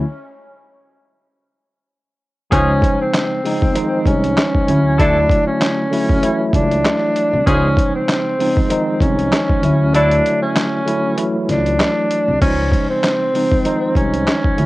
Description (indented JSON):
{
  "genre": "hip hop, boom-bap hip-hop",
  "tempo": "97 BPM",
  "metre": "4/4",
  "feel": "swing 56% on 16ths",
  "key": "unclear",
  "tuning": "A4 = 440 Hz",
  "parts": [
    { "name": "mellow tine electric piano", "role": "accompaniment", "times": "0.0-14.7 s", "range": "Db3 to C#5", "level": "-19 LUFS", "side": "equal", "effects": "medium stereo tremolo, high-pass filter, low-pass filter, cassette tape" },
    { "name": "breathy tenor saxophone", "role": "melody", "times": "2.5-14.7 s", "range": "C4 to D4", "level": "-18 LUFS", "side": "equal", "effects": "high-pass filter, low-pass filter, cassette tape" },
    { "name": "warm horn section", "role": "stabs", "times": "2.5-10.1 s", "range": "Eb4 to A4", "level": "-25 LUFS", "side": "left 1 dB", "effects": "high-pass filter, low-pass filter, cassette tape, analog delay" },
    { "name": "upright bass", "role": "bass", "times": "2.5-14.7 s", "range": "C2 to D2", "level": "-19 LUFS", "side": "equal", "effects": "none" },
    { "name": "boom bap sampler-style drum kit", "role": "drums", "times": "2.5-14.7 s", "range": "crash cymbal, handclaps, hi-hat, kick drum, snare drum", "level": "-18 LUFS", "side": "equal", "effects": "none" }
  ],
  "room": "light reverb, small room ambience",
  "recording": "home recording on cassette",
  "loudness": "-14 LUFS",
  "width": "side -18 dB against mid",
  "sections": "0.0-12.4 A section; 12.4-14.7 B section",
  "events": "break 0.0-2.5; kick muted 9.9-12.4",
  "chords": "0.0 N.C.; 2.5 Dbmaj9; 4.7 Dmaj9; 7.5 Dbmaj9; 9.6 Dmaj9; 12.4 Dbmaj9"
}